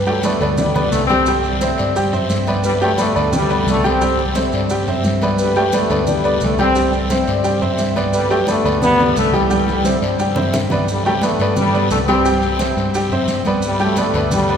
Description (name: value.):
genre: latin, salsa.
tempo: 175 BPM.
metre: 4/4.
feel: straight.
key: G major.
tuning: A4 = 439 Hz.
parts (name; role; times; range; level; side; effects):
breathy mellow round clay ocarina; second line; 0.0-10.8 s; A4 to E5; -24 LUFS; left 2 dB; none.
fingered electric bass; bass; 0.0-14.6 s; C2 to G2; -22 LUFS; equal; none.
bright trombone section; melody; 0.1-14.6 s; D3 to C4; -20 LUFS; left 1 dB; none.
bright upright piano; accompaniment; 0.1-14.6 s; G3 to G5; -19 LUFS; right 1 dB; none.
congas; percussion; 0.1-14.6 s; none; -24 LUFS; equal; none.
maracas; percussion; 0.1-14.6 s; none; -33 LUFS; right 3 dB; none.
guiro; percussion; 0.2-14.6 s; none; -31 LUFS; left 4 dB; none.
room: wet cathedral reverb, RT60 4.6 s.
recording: recorded in a church or concert hall.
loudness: -14 LUFS.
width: side -7 dB against mid.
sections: 0.0-10.9 A section; 10.9-14.6 A section.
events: drum fill 9.5-10.9.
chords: 0.0 Gadd9; 1.3 C; 2.6 Gadd9; 4.0 C; 5.4 Gadd9; 6.8 C; 10.9 Gadd9; 12.2 C; 13.6 Gadd9.